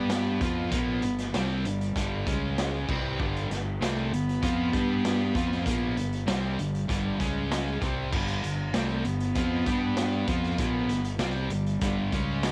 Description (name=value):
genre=quiet-loud alternative rock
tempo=97 BPM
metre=4/4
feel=straight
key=G mixolydian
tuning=A4 = 440 Hz
part: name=dark cello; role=melody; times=0.0-12.5 s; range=G3 to B3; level=-33 LUFS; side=equal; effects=cassette tape, analog delay
part: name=crunchy overdriven guitar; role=riff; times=0.0-12.5 s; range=G2 to G4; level=-38 LUFS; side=equal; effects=cassette tape
part: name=distorted electric guitar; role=riff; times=0.0-12.5 s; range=G2 to G4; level=-37 LUFS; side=equal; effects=overdrive, cassette tape
part: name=fuzz fingered electric bass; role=bass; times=0.0-12.5 s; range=G1 to G2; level=-34 LUFS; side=equal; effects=overdrive
part: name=raw garage drum kit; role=drums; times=0.1-12.5 s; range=crash cymbal, hi-hat, kick drum, snare drum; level=-35 LUFS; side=equal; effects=cassette tape
room=light reverb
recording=home recording on cassette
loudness=-28 LUFS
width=mono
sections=0.0-12.5 A section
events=none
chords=0.0 G; 2.3 C#5; 2.9 G; 7.2 C#5; 7.8 G